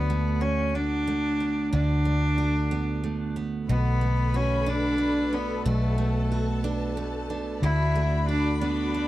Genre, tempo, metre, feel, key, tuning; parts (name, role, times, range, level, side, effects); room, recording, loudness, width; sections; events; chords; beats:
pop; 61 BPM (dotted quarters); 6/8; straight; A4 = 440 Hz
bright cello; melody; 0.0-9.1 s; A3 to E4; -28 LUFS; left 1 dB
picked steel-string acoustic guitar; accompaniment; 0.0-9.1 s; B2 to F#4; -30 LUFS; right 5 dB
vintage muted fingered electric bass; bass; 0.0-9.1 s; B1 to D2; -27 LUFS; left 1 dB
warm studio string section; sustained chords; 3.7-9.1 s; F#4 to B5; -34 LUFS; left 3 dB
little or no reverb; dry, close 1970s-style studio recording; -23 LUFS; side -15 dB against mid
0.0-9.1 A section
0.0 D6; 3.7 Bm7; 7.6 D6
0.74 | 1.73 2.71 | 3.69 4.67 | 5.66 6.64 | 7.62 8.60